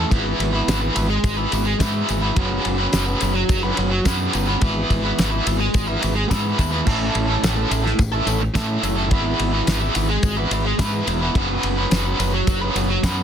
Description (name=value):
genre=indie rock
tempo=107 BPM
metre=4/4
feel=straight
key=unclear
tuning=A4 = 440 Hz
part: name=biting overdriven guitar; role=riff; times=0.0-13.2 s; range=A2 to B4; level=-21 LUFS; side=right 1 dB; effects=harmonic tremolo
part: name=growling fingered electric bass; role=bass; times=0.0-13.2 s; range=E1 to A2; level=-23 LUFS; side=equal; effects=overdrive
part: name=cloth-damped thuddy drum kit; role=drums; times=0.1-13.2 s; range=crash cymbal, kick drum, ride cymbal, snare drum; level=-24 LUFS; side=equal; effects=none
part: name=tambourine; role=percussion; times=0.7-13.2 s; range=none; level=-35 LUFS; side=left 14 dB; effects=none
room=little or no reverb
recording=dense, heavily limited modern master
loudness=-18 LUFS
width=side -8 dB against mid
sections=0.0-13.2 A section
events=none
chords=0.1 E/G#; 2.4 Bsus2/F#; 4.6 E/G#; 6.9 A; 9.1 E/G#; 11.4 Bsus2/F#